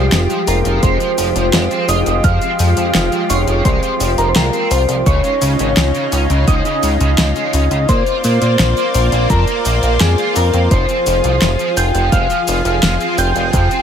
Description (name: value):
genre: synthwave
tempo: 85 BPM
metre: 4/4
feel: straight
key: F minor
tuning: A4 = 440 Hz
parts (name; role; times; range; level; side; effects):
- soft octave-layered synth lead; melody; 0.0-13.8 s; G4 to G5; -20 LUFS; left 1 dB; chorus, phaser, digital delay
- FM electric piano with soft pad layer; second line; 0.0-13.8 s; G5 to G6; -24 LUFS; right 1 dB; chorus, phaser, digital delay
- lush unison pad; sustained chords; 0.0-13.8 s; Db3 to D5; -20 LUFS; equal; chorus, sidechain pumping
- overdriven electric guitar; riff; 0.0-13.8 s; Db3 to Bb4; -23 LUFS; right 2 dB; ensemble chorus, ping-pong delay
- chorused synth bass; bass; 0.0-13.7 s; F1 to Bb2; -16 LUFS; equal; none
- pop drum kit; drums; 0.1-13.8 s; cabasa, hi-hat, snare drum; -19 LUFS; left 1 dB; none
- electronic kick drum; drums; 0.8-13.7 s; none; -16 LUFS; equal; none
room: little or no reverb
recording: none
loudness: -12 LUFS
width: side -8 dB against mid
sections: 0.0-13.8 A section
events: none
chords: 0.0 Fmadd9; 5.1 Dbadd9; 7.9 Bbadd9; 10.7 Fmadd9